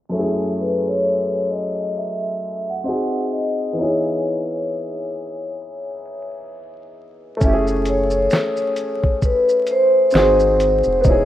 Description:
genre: lo-fi hip hop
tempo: 66 BPM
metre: 4/4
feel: swing 59% on 16ths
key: unclear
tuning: A4 = 440 Hz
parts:
  - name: warm upright piano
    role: accompaniment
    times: 0.1-11.2 s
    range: F#2 to G#4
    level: -23 LUFS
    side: equal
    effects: cassette tape, low-pass filter
  - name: vibraphone with soft mallets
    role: melody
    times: 0.6-11.2 s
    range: B4 to F#5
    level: -19 LUFS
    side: equal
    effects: low-pass filter
  - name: round analog bass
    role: bass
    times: 7.4-11.2 s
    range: E1 to G#1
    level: -22 LUFS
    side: equal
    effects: none
  - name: lo-fi sampler-style drum kit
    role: drums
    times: 7.4-11.2 s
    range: hi-hat, kick drum, shaker, snare drum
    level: -20 LUFS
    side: equal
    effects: none
  - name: finger snap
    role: percussion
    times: 8.3-10.4 s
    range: none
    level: barely audible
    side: none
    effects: none
room: moderate plate reverb, RT60 3.0 s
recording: rough home demo mix, vinyl crackle, low-pass filter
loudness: -17 LUFS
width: side -12 dB against mid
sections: 0.1-7.4 A section; 7.4-11.2 B section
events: filter sweep 0.1-7.4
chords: 0.1 F#m9; 2.9 G#7; 3.8 C#m7/E; 7.4 F#m9; 10.1 G#7

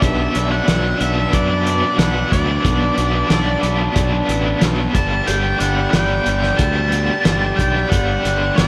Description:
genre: psychedelic rock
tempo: 91 BPM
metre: 4/4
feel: straight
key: B minor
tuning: A4 = 436 Hz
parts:
  - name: octave-fuzz lead guitar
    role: melody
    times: 0.0-8.7 s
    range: D5 to A5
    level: -24 LUFS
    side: equal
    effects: distortion, analog delay
  - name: pedal harmonium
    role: sustained chords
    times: 0.0-8.7 s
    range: D4 to B5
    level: -27 LUFS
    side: equal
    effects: none
  - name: biting overdriven guitar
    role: riff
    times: 0.0-8.7 s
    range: G2 to D4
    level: -24 LUFS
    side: equal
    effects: tremolo
  - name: fuzz fingered electric bass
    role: bass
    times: 0.0-8.7 s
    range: G1 to F#2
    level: -23 LUFS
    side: equal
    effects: overdrive
  - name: cloth-damped thuddy drum kit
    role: drums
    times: 0.0-8.7 s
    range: hi-hat, kick drum, snare drum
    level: -22 LUFS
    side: equal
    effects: none
room: wet lush hall reverb, RT60 2.9 s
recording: dreamy mix soaked in reverb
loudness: -17 LUFS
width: mono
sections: 0.0-8.7 A section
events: none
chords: 0.0 Bm7; 5.0 Gmaj7

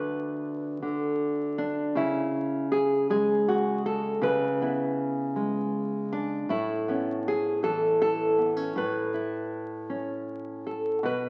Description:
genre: folk, solo fingerstyle acoustic guitar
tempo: 53 BPM (dotted quarters)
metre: 6/8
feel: straight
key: unclear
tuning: A4 = 440 Hz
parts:
  - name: nylon-string guitar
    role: solo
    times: 0.0-11.3 s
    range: D2 to B4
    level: -28 LUFS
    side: equal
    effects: none
room: wet large studio reverb, RT60 1.4 s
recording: very old 78 rpm record, vinyl crackle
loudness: -28 LUFS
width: mono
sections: 0.0-11.1 A section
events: none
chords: 0.0 Bm; 2.0 C#m7; 6.5 Aadd9

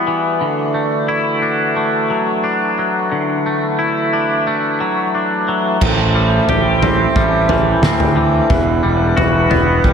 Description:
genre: post-rock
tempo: 89 BPM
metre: 4/4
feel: straight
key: unclear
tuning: A4 = 443 Hz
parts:
  - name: pedal harmonium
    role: sustained chords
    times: 0.0-9.9 s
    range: E3 to G5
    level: -20 LUFS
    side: right 1 dB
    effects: none
  - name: twangy electric guitar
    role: arpeggios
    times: 0.0-9.9 s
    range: E2 to G4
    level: -16 LUFS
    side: left 1 dB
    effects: wide subtle chorus, ping-pong delay
  - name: fuzz picked electric bass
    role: bass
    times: 5.8-9.9 s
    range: E1 to D2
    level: -18 LUFS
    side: right 1 dB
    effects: overdrive
  - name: loose indie drum kit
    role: drums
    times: 5.8-9.9 s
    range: crash cymbal, kick drum, snare drum, toms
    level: -18 LUFS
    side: equal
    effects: none
room: wet lush hall reverb, RT60 2.0 s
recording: dreamy mix soaked in reverb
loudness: -13 LUFS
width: side -7 dB against mid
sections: 0.0-5.8 A section; 5.8-9.9 B section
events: none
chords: 0.4 Dadd9; 5.8 Am7; 8.5 Emadd9

